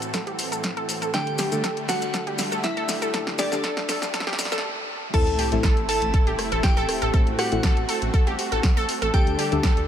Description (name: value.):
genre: progressive house.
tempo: 120 BPM.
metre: 4/4.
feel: straight.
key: A dorian.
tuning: A4 = 440 Hz.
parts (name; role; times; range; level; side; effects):
glassy synth bell; melody; 0.0-9.8 s; D4 to A5; -29 LUFS; equal; chorus, dub echo.
supersaw pad; sustained chords; 0.0-9.9 s; D2 to A4; -32 LUFS; right 1 dB; sidechain pumping.
house drum kit; drums; 0.0-9.9 s; crash cymbal, hi-hat, rim click, snare drum; -29 LUFS; equal; sidechain pumping on hats, sidechain pumping on cymbals.
maracas; percussion; 0.0-4.6 s; none; -34 LUFS; left 4 dB; none.
wide unison pluck; arpeggios; 0.1-9.7 s; G4 to A4; -29 LUFS; right 1 dB; sidechain pumping, dub echo.
electronic kick drum; drums; 0.1-9.7 s; none; -21 LUFS; equal; high-pass filter on kick.
deep mellow chord stab; stabs; 1.1-9.6 s; A2 to A4; -31 LUFS; left 3 dB; chorus, sidechain pumping, dub echo.
sub drop; sound effects; 5.1-7.1 s; none; -31 LUFS; equal; none.
dark detuned saw bass; bass; 5.3-9.8 s; A1 to D2; -29 LUFS; equal; sidechain pumping.
room: light reverb.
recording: high-pass filter.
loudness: -21 LUFS.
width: side -10 dB against mid.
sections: 0.0-5.1 A section; 5.1-9.9 B section.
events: build-up 0.0-5.1; drum fill 0.0-4.6; filter sweep on synth pluck 0.0-5.1; stop 4.6-5.1; drop 5.1-9.9; impact 5.1-7.1.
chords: 0.0 Am; 1.1 Dsus4; 5.1 Am; 9.1 Dsus4.